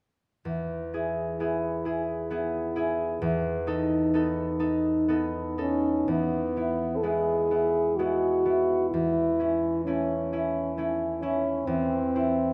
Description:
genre	classical, romantic duo for French horn and harp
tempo	64 BPM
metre	3/4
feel	rubato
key	E major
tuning	A4 = 442 Hz
part	concert harp	accompaniment	0.5-12.5 s	E2 to A4	-29 LUFS	equal	none
part	mellow French horn	melody	5.6-12.5 s	B3 to A4	-28 LUFS	equal	none
room	wet recital hall reverb, RT60 1.6 s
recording	none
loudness	-27 LUFS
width	mono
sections	0.5-6.1 A section; 6.1-12.5 B section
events	none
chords	0.5 E; 3.2 B7/E; 6.1 E; 8.9 A/E; 11.7 Am/E

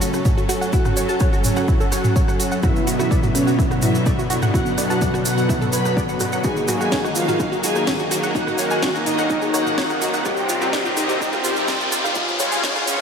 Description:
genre	melodic techno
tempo	126 BPM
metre	4/4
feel	straight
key	unclear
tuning	A4 = 440 Hz
part	wide unison lead	melody	0.0-13.0 s	C#4 to B4	-25 LUFS	equal	sidechain pumping, diffuse ambient delay
part	rich chamber violin section	second line	0.0-13.0 s	C#5 to B5	-30 LUFS	left 1 dB	sidechain pumping, low-pass filter, ping-pong delay
part	warm studio string section	sustained chords	0.0-13.0 s	C#3 to A4	-28 LUFS	equal	sidechain pumping
part	wide unison pluck	arpeggios	0.0-12.8 s	D#4 to A5	-26 LUFS	right 1 dB	sidechain pumping, ping-pong delay
part	brassy analog pad	stabs	0.0-13.0 s	B2 to F#4	-25 LUFS	left 1 dB	ensemble chorus, sidechain pumping, ping-pong delay
part	bowed-like drone	drone	0.2-13.0 s	F#2	-32 LUFS	right 1 dB	none
part	techno drum kit	drums	0.0-13.0 s	hi-hat, rim click, snare drum, toms	-26 LUFS	equal	overdrive
part	tube shaker	percussion	0.0-13.0 s	none	-31 LUFS	right 3 dB	none
part	electronic kick drum	drums	0.3-12.7 s	none	-21 LUFS	equal	none
part	riser	sound effects	8.9-13.0 s	none	-28 LUFS	left 1 dB	none
room	wet huge ambient reverb, RT60 8.1 s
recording	dreamy mix soaked in reverb, high-pass filter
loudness	-17 LUFS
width	side -6 dB against mid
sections	0.0-13.0 A section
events	build-up 0.0-13.0; filter sweep on analog synth lead 0.0-13.0; filter sweep on violin section 0.0-13.0; filter sweep on analog synth pad 0.0-13.0; filter sweep 0.0-13.0; riser 8.9-13.0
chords	0.0 F#m; 2.6 Bm; 6.4 D#m; 10.3 Cm; 12.2 C#7

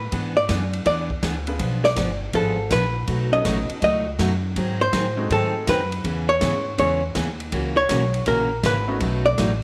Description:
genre	country, western swing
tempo	162 BPM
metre	4/4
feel	swing 66% on 8ths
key	B mixolydian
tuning	A4 = 440 Hz
part	archtop guitar, miked and amplified	melody	0.0-9.6 s	A4 to D#5	-24 LUFS	equal	none
part	upright bass	bass	0.0-9.6 s	G1 to A2	-28 LUFS	equal	none
part	picked steel-string acoustic guitar	accompaniment	0.1-9.5 s	B2 to G#4	-29 LUFS	equal	none
part	swinging big-band drum kit	drums	0.1-9.5 s	hi-hat, kick drum, ride cymbal, snare drum	-33 LUFS	equal	none
part	bright upright piano	accompaniment	1.5-9.4 s	G#3 to B4	-32 LUFS	equal	none
room	moderate plate reverb, RT60 1.1 s, small room ambience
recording	none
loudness	-22 LUFS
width	mono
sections	0.0-9.6 A section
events	hollow-body jazz guitar solo 0.0-9.6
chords	0.1 E9; 1.6 Fdim7; 3.1 B9; 4.6 G#7b9; 6.0 C#m7; 7.5 F#9; 9.0 B9

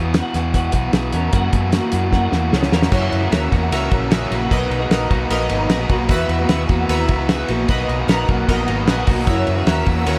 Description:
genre	jangly indie pop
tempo	151 BPM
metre	4/4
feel	straight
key	unclear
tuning	A4 = 440 Hz
part	crunchy overdriven guitar	accompaniment	0.0-10.2 s	F#2 to F#4	-26 LUFS	equal	none
part	twelve-string electric guitar	arpeggios	0.0-10.2 s	A#3 to C#5	-26 LUFS	equal	ensemble chorus
part	vintage muted fingered electric bass	bass	0.0-10.2 s	G#1 to F#2	-24 LUFS	equal	none
part	cloth-damped thuddy drum kit	drums	0.1-10.2 s	crash cymbal, hi-hat, kick drum, ride cymbal, snare drum	-22 LUFS	equal	none
part	chorused retro synth keys	accompaniment	2.9-10.2 s	B3 to F#5	-26 LUFS	equal	none
part	warm symphonic string section	sustained chords	9.3-10.2 s	C#5 to E6	-34 LUFS	equal	none
room	light reverb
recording	none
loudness	-18 LUFS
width	mono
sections	0.0-2.9 A section; 2.9-10.2 B section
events	drum fill 2.1-2.9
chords	0.0 Esus2; 1.3 F#7; 4.5 Bmaj7; 6.1 Esus2; 7.7 Bmaj7; 9.3 F#7

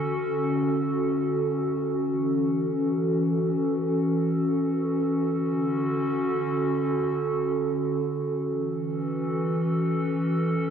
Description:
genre	hip hop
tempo	free time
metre	none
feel	none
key	A major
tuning	A4 = 440 Hz
part	warbly tape-like pad	solo	0.0-10.7 s	D3 to A4	-24 LUFS	equal	chorus, built-in reverb, digital delay
room	wet echo chamber reverb, RT60 1.9 s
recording	none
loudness	-24 LUFS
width	side -8 dB against mid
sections	0.0-8.5 A section; 8.5-10.7 B section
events	none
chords	0.0 Dmaj7; 2.0 A6; 5.2 Dmaj7; 8.5 A6

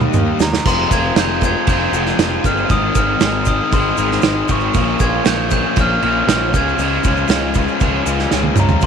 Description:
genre	indie rock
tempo	117 BPM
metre	4/4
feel	straight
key	F minor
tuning	A4 = 437 Hz
part	cranked stack guitar	riff	0.0-8.9 s	F2 to F4	-23 LUFS	right 13 dB	overdrive, analog chorus, tape echo
part	fuzz guitar	riff	0.0-8.9 s	F2 to Ab4	-21 LUFS	left 16 dB	distortion
part	fuzz picked electric bass	bass	0.0-8.9 s	F1 to Eb2	-22 LUFS	left 1 dB	overdrive
part	loose indie drum kit	drums	0.0-8.9 s	crash cymbal, kick drum, snare drum, toms	-17 LUFS	right 3 dB	none
part	tube shaker	percussion	0.0-8.9 s	none	-33 LUFS	left 18 dB	none
part	glockenspiel with soft plastic mallets	melody	0.4-8.9 s	Bb5 to Ab6	-21 LUFS	left 1 dB	tape echo
room	small room reverb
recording	1960s-style stereo with parts hard left and right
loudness	-13 LUFS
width	side -7 dB against mid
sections	0.7-8.9 A section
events	drum fill 0.0-0.7, 8.3-8.8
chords	0.0 Eb; 0.7 Fm; 2.7 Ab; 4.8 Bbm; 6.5 Db

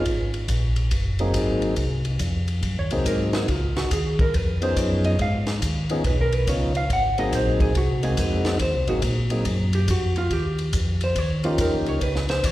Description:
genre	soul jazz organ trio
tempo	141 BPM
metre	4/4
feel	swing 65% on 8ths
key	Ab mixolydian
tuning	A4 = 440 Hz
part	percussive tonewheel organ	melody	0.0-12.0 s	F3 to Ab4	-26 LUFS	left 1 dB	slow rotary speaker, slapback echo
part	vintage hollow-body jazz guitar	accompaniment	0.0-12.5 s	F4 to Gb5	-27 LUFS	right 1 dB	slapback echo
part	mellow tonewheel organ	bass	0.0-12.5 s	Gb1 to Bb2	-24 LUFS	equal	slow rotary speaker
part	compact cocktail drum kit	drums	0.1-12.5 s	hi-hat, kick drum, ride cymbal, snare drum	-27 LUFS	equal	none
room	light reverb, small room ambience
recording	live gig heard through the venue's PA, recital hall reverb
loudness	-20 LUFS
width	side -15 dB against mid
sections	0.0-12.5 A section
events	hollow-body jazz guitar solo 0.0-12.5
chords	0.1 Ab9; 3.5 Db9; 6.9 Ab9; 10.3 Eb9

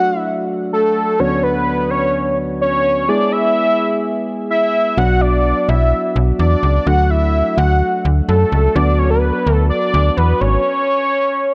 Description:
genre	synth-pop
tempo	127 BPM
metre	4/4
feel	straight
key	B dorian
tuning	A4 = 438 Hz
part	fat analog lead	melody	0.0-11.5 s	A4 to F#5	-19 LUFS	equal	chorus, phaser
part	soft electric-piano-like synth keys	accompaniment	0.0-10.6 s	D2 to G#4	-23 LUFS	equal	chorus
part	slap-like FM bass	bass	5.0-10.6 s	G#1 to F#2	-17 LUFS	equal	none
room	moderate plate reverb, RT60 2.9 s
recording	dark, warm production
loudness	-16 LUFS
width	mono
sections	0.0-11.5 A section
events	stop 10.6-11.5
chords	0.0 D; 1.2 Bm/D; 3.1 E; 5.0 Bm; 6.9 D; 8.8 Bm/D; 10.6 N.C.

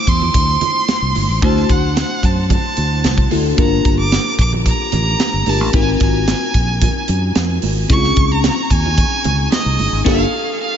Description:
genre	polished 1980s jazz-funk pop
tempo	111 BPM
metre	4/4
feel	straight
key	unclear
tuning	A4 = 441 Hz
part	bright violin	melody	0.0-10.8 s	Eb5 to D6	-20 LUFS	right 2 dB	tape echo
part	bell-like FM electric piano	accompaniment	0.0-10.8 s	A3 to C5	-20 LUFS	left 4 dB	lush chorus
part	fingered electric bass	bass	0.1-10.2 s	G1 to F#2	-18 LUFS	equal	none
part	crisp fusion drum kit	drums	0.1-10.2 s	crash cymbal, hi-hat, kick drum, snare drum	-18 LUFS	equal	none
part	congas	percussion	0.2-9.9 s	none	-29 LUFS	right 8 dB	none
room	light reverb, small room ambience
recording	nothing above 7.6 kHz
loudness	-13 LUFS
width	side -9 dB against mid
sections	0.0-10.8 A section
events	band accent 10.1-10.8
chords	0.0 Dm9; 1.4 D7; 3.6 Gm9; 5.7 Ab13; 7.9 Dbmaj9; 10.1 Gm9

